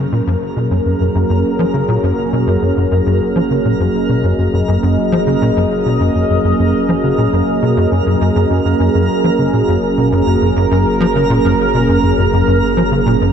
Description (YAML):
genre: ambient, sequencer-driven space music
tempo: 102 BPM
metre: 4/4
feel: straight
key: F# major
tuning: A4 = 442 Hz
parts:
  - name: sweeping resonant pad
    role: sustained chords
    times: 0.0-13.3 s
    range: F#3 to D#5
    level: -15 LUFS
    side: right 1 dB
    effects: chorus
  - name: tight sequencer bass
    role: riff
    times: 0.0-13.3 s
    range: F#2 to E#3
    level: -15 LUFS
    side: equal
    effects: ensemble chorus, ping-pong delay
  - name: round analog bass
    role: bass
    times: 0.0-13.3 s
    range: F#1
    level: -30 LUFS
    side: equal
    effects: none
  - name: twinkling granular texture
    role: texture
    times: 0.0-13.3 s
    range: A#4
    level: -23 LUFS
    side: right 2 dB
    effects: built-in reverb
room: moderate huge ambient reverb, RT60 8.2 s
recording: dreamy mix soaked in reverb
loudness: -12 LUFS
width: side -8 dB against mid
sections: 0.0-13.3 A section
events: fade-in on analog synth bass 0.0-13.3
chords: 0.0 F#add9